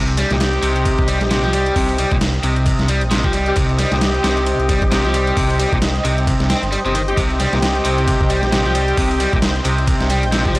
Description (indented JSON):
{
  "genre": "breakbeat, breaks",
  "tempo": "133 BPM",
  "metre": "4/4",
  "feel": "swing 58% on 16ths",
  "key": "C minor",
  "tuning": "A4 = 440 Hz",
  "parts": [
    { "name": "lush unison pad", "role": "sustained chords", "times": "0.3-10.6 s", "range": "C5 to G6", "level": "-25 LUFS", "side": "equal", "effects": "chorus, phaser, sidechain pumping" },
    { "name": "overdriven electric guitar", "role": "riff", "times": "0.0-10.6 s", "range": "Bb2 to C4", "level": "-21 LUFS", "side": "equal", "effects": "tube saturation, analog delay" },
    { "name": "dark detuned saw bass", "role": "bass", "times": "0.0-10.6 s", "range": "G1 to C2", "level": "-20 LUFS", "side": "equal", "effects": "none" },
    { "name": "electronic hi-hat", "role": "drums", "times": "0.1-10.6 s", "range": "none", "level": "-32 LUFS", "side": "left 1 dB", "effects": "studio reverb" },
    { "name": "dusty soul sampler-style drum kit", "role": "drums", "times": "0.2-10.6 s", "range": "hi-hat, kick drum, ride cymbal, snare drum", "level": "-20 LUFS", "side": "equal", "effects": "overdrive, studio reverb" },
    { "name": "mellow horn section", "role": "stabs", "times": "0.3-10.5 s", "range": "C4 to G4", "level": "-21 LUFS", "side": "left 1 dB", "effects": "analog delay" }
  ],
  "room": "light reverb, digital ambience",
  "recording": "dry, gritty hardware recording, transformer saturation, vinyl crackle",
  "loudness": "-14 LUFS",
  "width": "side -20 dB against mid",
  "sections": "0.0-10.6 A section",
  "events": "none",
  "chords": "0.0 Cm",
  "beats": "0.41 0.86 1.31 | 1.76 2.21 2.66 3.11 | 3.56 4.01 4.46 4.92 | 5.37 5.82 6.27 6.72 | 7.17 7.62 8.07 8.53 | 8.98 9.43 9.88 10.33"
}